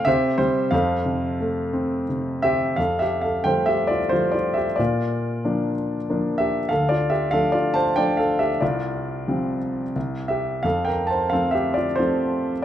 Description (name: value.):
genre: classical, lyrical solo piano.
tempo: 84-100 BPM.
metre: 3/4.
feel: rubato.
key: F major.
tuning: A4 = 441 Hz.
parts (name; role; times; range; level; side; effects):
warm grand piano; solo; 0.0-12.6 s; C2 to A5; -20 LUFS; equal; none.
room: moderate recital hall reverb, RT60 1.7 s.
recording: minimal, uncompressed stereo recording.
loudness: -20 LUFS.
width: side -11 dB against mid.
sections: 0.0-2.8 A section; 2.8-12.6 B section.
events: none.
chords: 0.1 C; 0.7 Fadd9; 4.8 Bb; 6.7 Dm; 8.6 Csus4; 10.0 C; 10.6 F.